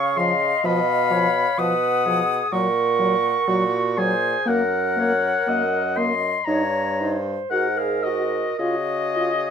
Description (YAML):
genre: classical, slow romantic movement for wind quintet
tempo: 54-64 BPM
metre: 4/4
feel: rubato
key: Db major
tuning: A4 = 442 Hz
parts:
  - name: mellow silver concert flute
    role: melody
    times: 0.0-9.5 s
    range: Gb4 to Gb5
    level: -28 LUFS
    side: left 7 dB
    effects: none
  - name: warm oboe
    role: second line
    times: 0.0-9.5 s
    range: Eb5 to Eb6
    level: -22 LUFS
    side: left 2 dB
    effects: none
  - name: warm clarinet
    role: accompaniment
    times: 0.0-9.5 s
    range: Gb4 to F5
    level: -26 LUFS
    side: right 5 dB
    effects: none
  - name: warm bassoon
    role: bass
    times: 0.0-9.5 s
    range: Gb2 to Db3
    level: -27 LUFS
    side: right 2 dB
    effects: none
  - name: clear French horn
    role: accompaniment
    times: 0.2-9.3 s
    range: F3 to Gb4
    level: -25 LUFS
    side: left 1 dB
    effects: none
room: light reverb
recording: close, detailed microphones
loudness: -19 LUFS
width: side -7 dB against mid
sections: 0.0-9.5 A section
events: none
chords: 0.0 Db; 0.7 Db9/Cb; 2.5 Gb/Bb; 4.5 Gb; 6.5 Eb7/G; 7.5 Absus2; 8.6 Db